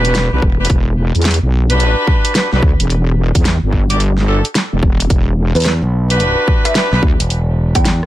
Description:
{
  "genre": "glitch hop",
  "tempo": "109 BPM",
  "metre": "4/4",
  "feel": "swing 63% on 16ths",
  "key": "E minor",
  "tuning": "A4 = 440 Hz",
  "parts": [
    { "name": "warm horn section", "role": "stabs", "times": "0.0-7.0 s", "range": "D4 to D5", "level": "-18 LUFS", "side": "equal", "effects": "vintage 12-bit sampler grit, sidechain pumping, tape echo" },
    { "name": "wobble bass", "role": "bass", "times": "0.0-7.2 s", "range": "E1 to E2", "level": "-14 LUFS", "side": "equal", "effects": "chorus, overdrive" },
    { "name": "pop drum kit", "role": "drums", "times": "0.0-8.1 s", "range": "hi-hat, rim click, snare drum", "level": "-18 LUFS", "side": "equal", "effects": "none" },
    { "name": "electronic kick drum", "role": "drums", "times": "0.4-7.8 s", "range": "none", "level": "-14 LUFS", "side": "equal", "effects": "none" },
    { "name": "woody wave-folded pluck", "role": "melody", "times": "5.6-8.1 s", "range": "B4 to G5", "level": "-22 LUFS", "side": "right 1 dB", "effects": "ensemble chorus, tape echo" },
    { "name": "growling fingered electric bass", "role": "bass", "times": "5.6-8.0 s", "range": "E1 to E2", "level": "-14 LUFS", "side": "equal", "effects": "overdrive" }
  ],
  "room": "little or no reverb",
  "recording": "none",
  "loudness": "-12 LUFS",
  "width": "side -14 dB against mid",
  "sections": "0.0-8.1 A section",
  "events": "none",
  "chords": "0.0 Em7"
}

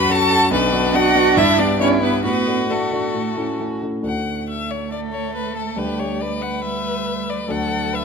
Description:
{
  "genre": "quick classical-period movement for piano quartet",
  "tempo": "139 BPM",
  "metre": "4/4",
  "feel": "rubato",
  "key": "D major",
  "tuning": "A4 = 445 Hz",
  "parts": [
    { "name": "clear violin", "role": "melody", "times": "0.0-8.0 s", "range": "A4 to B5", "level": "-22 LUFS", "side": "left 7 dB", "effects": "none" },
    { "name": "rich cello", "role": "second line", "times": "0.0-8.0 s", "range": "F#3 to B4", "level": "-23 LUFS", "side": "right 10 dB", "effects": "none" },
    { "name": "warm violin", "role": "second line", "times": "0.0-8.0 s", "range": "D4 to B4", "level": "-24 LUFS", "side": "left 2 dB", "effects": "none" },
    { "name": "warm concert grand piano", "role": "accompaniment", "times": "0.0-8.0 s", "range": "B1 to G4", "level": "-23 LUFS", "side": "equal", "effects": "none" }
  ],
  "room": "moderate scoring stage reverb, RT60 1.8 s",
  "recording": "close, detailed microphones",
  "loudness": "-17 LUFS",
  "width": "side -5 dB against mid",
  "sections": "0.0-4.1 A section; 4.1-8.0 B section",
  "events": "none",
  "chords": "0.0 F#m; 0.5 Bm; 1.4 Em7/G; 2.3 D/A; 3.2 A; 4.1 D; 5.8 G/D; 7.5 D"
}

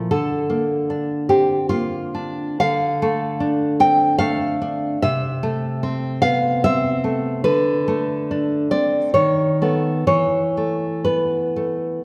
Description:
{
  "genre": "romantic piece for solo classical guitar",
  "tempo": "61-76 BPM",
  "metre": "3/4",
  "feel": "rubato",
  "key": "A minor",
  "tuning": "A4 = 440 Hz",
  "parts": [
    { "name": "nylon-string guitar", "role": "solo", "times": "0.0-12.0 s", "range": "C3 to G5", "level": "-20 LUFS", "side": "equal", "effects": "none" }
  ],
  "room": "wet scoring stage reverb, RT60 1.8 s",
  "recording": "recorded in a church or concert hall",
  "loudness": "-20 LUFS",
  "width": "mono",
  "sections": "0.0-12.0 A section",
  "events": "none",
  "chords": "0.1 Bb/D; 2.6 Dm; 5.0 Am/C; 7.5 Bm7/D; 9.1 B7/D#; 10.1 Esus4"
}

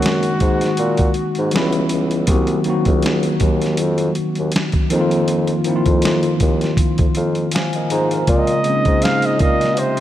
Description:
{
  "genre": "R&B, neo-soul",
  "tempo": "80 BPM",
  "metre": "4/4",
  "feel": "swing 56% on 16ths",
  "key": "unclear",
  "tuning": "A4 = 440 Hz",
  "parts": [
    { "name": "breathy flugelhorn", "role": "melody", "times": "0.0-1.9, 8.3-10.0 s", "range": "Gb4 to F5", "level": "-22 LUFS", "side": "equal", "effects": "analog delay" },
    { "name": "tine electric piano", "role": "accompaniment", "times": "0.0-10.0 s", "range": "Db3 to Bb5", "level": "-19 LUFS", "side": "left 1 dB", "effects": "fast stereo tremolo" },
    { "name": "mellow bassoon", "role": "bass", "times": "0.0-10.0 s", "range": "C2 to C3", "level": "-21 LUFS", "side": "equal", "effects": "none" },
    { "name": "dusty soul sampler-style drum kit", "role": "drums", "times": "0.0-10.0 s", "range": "hi-hat, kick drum, snare drum", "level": "-20 LUFS", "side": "equal", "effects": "none" }
  ],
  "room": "moderate cathedral reverb, RT60 5.2 s",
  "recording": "dreamy mix soaked in reverb",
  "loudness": "-15 LUFS",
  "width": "side -12 dB against mid",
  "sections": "0.0-10.0 A section",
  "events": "tine electric piano fill 6.8-8.3",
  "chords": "0.0 Ab9; 1.5 C#m7b5; 2.3 Cm7b5; 4.9 F7sus4; 8.3 Bbm9"
}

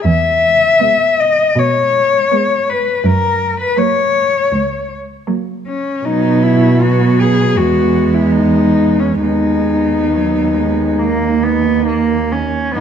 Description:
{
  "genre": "classical, lyrical piece for cello ensemble",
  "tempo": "66-84 BPM",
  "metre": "4/4",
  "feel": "rubato",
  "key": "unclear",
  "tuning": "A4 = 438 Hz",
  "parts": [
    { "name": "dark cello", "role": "melody", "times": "0.0-12.8 s", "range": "C#4 to E5", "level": "-14 LUFS", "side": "left 5 dB", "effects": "none" },
    { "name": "dark cello", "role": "bass", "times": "0.0-12.8 s", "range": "C#2 to B2", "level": "-17 LUFS", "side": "right 2 dB", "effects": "none" },
    { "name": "warm cello", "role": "second line", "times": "0.8-12.5 s", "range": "A#3 to B3", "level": "-19 LUFS", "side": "right 10 dB", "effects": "none" },
    { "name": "rich cello", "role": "accompaniment", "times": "0.8-12.8 s", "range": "F#3 to C#4", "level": "-18 LUFS", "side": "right 2 dB", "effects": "none" }
  ],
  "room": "moderate recital hall reverb, RT60 1.8 s",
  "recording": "none",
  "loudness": "-11 LUFS",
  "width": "side -8 dB against mid",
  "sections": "0.0-12.7 A section",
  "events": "none",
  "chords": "0.0 E; 3.0 F#; 6.0 B5; 7.6 E; 9.2 G#m/D#; 11.0 D#5"
}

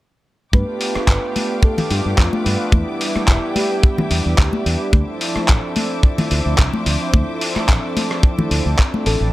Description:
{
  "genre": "nu-disco, nu disco",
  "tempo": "109 BPM",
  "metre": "4/4",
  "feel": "swing 53% on 16ths",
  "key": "D dorian",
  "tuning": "A4 = 440 Hz",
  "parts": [
    { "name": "soft octave-layered synth lead", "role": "melody", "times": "0.5-4.1, 9.1-9.2 s", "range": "E4 to B4", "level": "-25 LUFS", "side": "left 1 dB", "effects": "chorus, tape echo" },
    { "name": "warm analog pad", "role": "accompaniment", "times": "0.5-9.3 s", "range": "F3 to C5", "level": "-24 LUFS", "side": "right 1 dB", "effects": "chorus, tape echo" },
    { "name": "rich studio string section", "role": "sustained chords", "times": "0.5-9.3 s", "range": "B4 to D6", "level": "-29 LUFS", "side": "left 2 dB", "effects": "sidechain pumping" },
    { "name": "fingered electric bass with an envelope filter", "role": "bass", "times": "0.5-9.3 s", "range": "E1 to G2", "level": "-20 LUFS", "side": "equal", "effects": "none" },
    { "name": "kick drum", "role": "drums", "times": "0.5-8.9 s", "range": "none", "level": "-13 LUFS", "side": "equal", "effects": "none" },
    { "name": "congas", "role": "percussion", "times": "0.5-9.0 s", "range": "none", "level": "-23 LUFS", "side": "left 2 dB", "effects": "none" },
    { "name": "dusty soul sampler-style drum kit", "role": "drums", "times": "0.8-9.2 s", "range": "handclaps, hi-hat, rim click", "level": "-23 LUFS", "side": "equal", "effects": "overdrive" }
  ],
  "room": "little or no reverb",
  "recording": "none",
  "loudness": "-15 LUFS",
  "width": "side -17 dB against mid",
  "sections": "0.5-9.3 A section",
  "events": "none",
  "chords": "0.5 G7; 2.7 Em7; 4.9 Dm9"
}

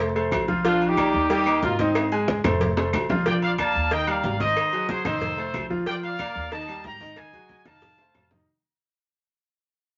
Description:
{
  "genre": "latin, salsa",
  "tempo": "184 BPM",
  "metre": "4/4",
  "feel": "straight",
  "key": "Bb major",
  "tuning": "A4 = 440 Hz",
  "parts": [
    { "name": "bright upright piano", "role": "accompaniment", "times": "0.0-8.4 s", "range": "Eb3 to Ab5", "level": "-28 LUFS", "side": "equal", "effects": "none" },
    { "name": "upright bass", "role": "bass", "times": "0.0-8.4 s", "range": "F1 to Eb2", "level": "-34 LUFS", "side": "equal", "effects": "none" },
    { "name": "congas", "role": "percussion", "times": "0.0-8.4 s", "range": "none", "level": "-32 LUFS", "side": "equal", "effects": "none" },
    { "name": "agogo bells and timbales", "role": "percussion", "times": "0.2-8.4 s", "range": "none", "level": "-35 LUFS", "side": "equal", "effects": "none" },
    { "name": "claves", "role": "percussion", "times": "0.3-8.3 s", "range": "none", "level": "-37 LUFS", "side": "equal", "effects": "none" },
    { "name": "cowbell and bongos", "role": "percussion", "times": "0.3-8.4 s", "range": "none", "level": "-33 LUFS", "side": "equal", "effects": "none" },
    { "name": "warm horn section", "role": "melody", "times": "0.7-2.1 s", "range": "Bb3 to G4", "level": "-24 LUFS", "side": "equal", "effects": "none" },
    { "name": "bright trumpet section", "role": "melody", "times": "3.3-8.3 s", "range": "Ab4 to Bb5", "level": "-29 LUFS", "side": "equal", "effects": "none" }
  ],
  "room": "wet studio reverb, RT60 0.5 s",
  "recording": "vinyl crackle, nothing above 7.4 kHz",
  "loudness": "-24 LUFS",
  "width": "mono",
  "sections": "0.0-3.3 A section; 3.3-8.5 B section",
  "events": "drum fill 2.0-3.3, 7.2-8.5; fade-out 3.3-8.5",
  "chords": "0.0 F; 0.7 Bb; 1.3 Eb; 2.0 Ab; 2.6 F; 3.3 Bb; 3.9 Eb; 4.6 Ab7; 5.2 F7; 5.9 Bb; 6.5 Eb; 7.2 Ab5; 7.8 F7"
}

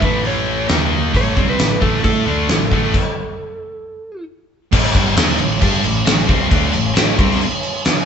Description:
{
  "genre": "hard rock",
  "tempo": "134 BPM",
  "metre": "4/4",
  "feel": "straight",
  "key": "unclear",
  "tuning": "A4 = 440 Hz",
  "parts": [
    { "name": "lightly driven lead guitar", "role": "melody", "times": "0.0-4.2 s", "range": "A4 to C#5", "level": "-24 LUFS", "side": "right 2 dB", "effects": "none" },
    { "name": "heavy high-gain guitar", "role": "riff", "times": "0.0-7.4 s", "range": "G2 to A4", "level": "-21 LUFS", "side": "left 7 dB", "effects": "distortion" },
    { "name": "sludgy distorted guitar", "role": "riff", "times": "0.0-7.4 s", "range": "G2 to A4", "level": "-23 LUFS", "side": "right 6 dB", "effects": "overdrive" },
    { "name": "tight distorted guitar", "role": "riff", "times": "0.0-2.9 s", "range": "A2 to A4", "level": "-26 LUFS", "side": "equal", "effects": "distortion" },
    { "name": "growling picked electric bass", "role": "bass", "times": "0.0-7.4 s", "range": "G1 to A2", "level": "-21 LUFS", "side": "equal", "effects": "overdrive" },
    { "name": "huge arena drum kit", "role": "drums", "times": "0.0-8.0 s", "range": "crash cymbal, hi-hat, kick drum, snare drum", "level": "-16 LUFS", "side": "equal", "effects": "none" }
  ],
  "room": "moderate stone room reverb, RT60 1.1 s",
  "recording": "band playing live in one room, nothing above 8.0 kHz",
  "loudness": "-14 LUFS",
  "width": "side -7 dB against mid",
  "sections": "0.0-4.7 A section; 4.7-8.1 B section",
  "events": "stop 2.9-4.7",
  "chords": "0.0 A; 0.7 D#5; 1.1 A5; 2.9 N.C.; 4.7 A5"
}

